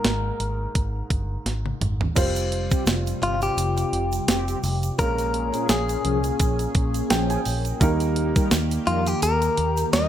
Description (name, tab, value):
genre	1980s-style pop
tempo	85 BPM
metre	4/4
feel	swing 55% on 16ths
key	unclear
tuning	A4 = 440 Hz
part	direct-recorded clean electric guitar	melody	0.0-10.1 s	F4 to Eb5	-26 LUFS	left 2 dB	spring reverb
part	warm baby grand piano	accompaniment	0.0-10.1 s	Ab2 to Ab5	-30 LUFS	right 2 dB	none
part	vintage muted fingered electric bass	bass	0.0-10.1 s	F1 to F2	-26 LUFS	equal	none
part	clean 12-bit digital drum machine	drums	0.0-10.1 s	crash cymbal, hi-hat, kick drum, snare drum, toms	-24 LUFS	right 1 dB	none
part	chorused pulse-width pad	sustained chords	2.2-10.1 s	C3 to Ab4	-29 LUFS	left 1 dB	none
part	egg shaker	percussion	2.2-10.1 s	none	-39 LUFS	right 10 dB	none
part	mellow synth brass	stabs	2.7-10.1 s	F3 to Bb4	-30 LUFS	left 2 dB	chorus
room	light reverb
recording	none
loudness	-21 LUFS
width	side -10 dB against mid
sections	0.0-2.2 A section; 2.2-10.1 B section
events	drum fill 1.5-2.2; grand piano fill 6.8-7.8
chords	0.0 Absus2; 2.2 Fsus2; 5.0 Bbm7; 7.8 Eb